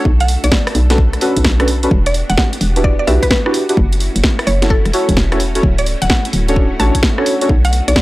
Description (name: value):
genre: UK garage, two-step garage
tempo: 129 BPM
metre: 4/4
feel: swing 66% on 16ths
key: unclear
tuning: A4 = 440 Hz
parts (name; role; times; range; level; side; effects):
- soft string machine; sustained chords; 0.0-8.0 s; A3 to A4; -27 LUFS; equal; ensemble chorus, sidechain pumping
- deep mellow chord stab; stabs; 0.0-7.5 s; C#4 to C#5; -18 LUFS; equal; chorus
- hollow knocking FM bass; bass; 0.1-7.9 s; D1 to B1; -15 LUFS; equal; none
- electronic kick drum; drums; 0.1-8.0 s; none; -15 LUFS; equal; none
- mallet-like synth pluck; melody; 0.2-8.0 s; A4 to A5; -20 LUFS; equal; chorus, tape echo
- house drum kit; drums; 0.2-8.0 s; hi-hat, rim click, snare drum; -18 LUFS; equal; none
room: little or no reverb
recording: dry, gritty hardware recording, transformer saturation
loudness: -11 LUFS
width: side -18 dB against mid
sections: 0.0-8.0 A section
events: none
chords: 0.1 Bm9; 1.9 Em9; 3.8 F#m7; 5.6 Dmaj7; 7.5 Bm7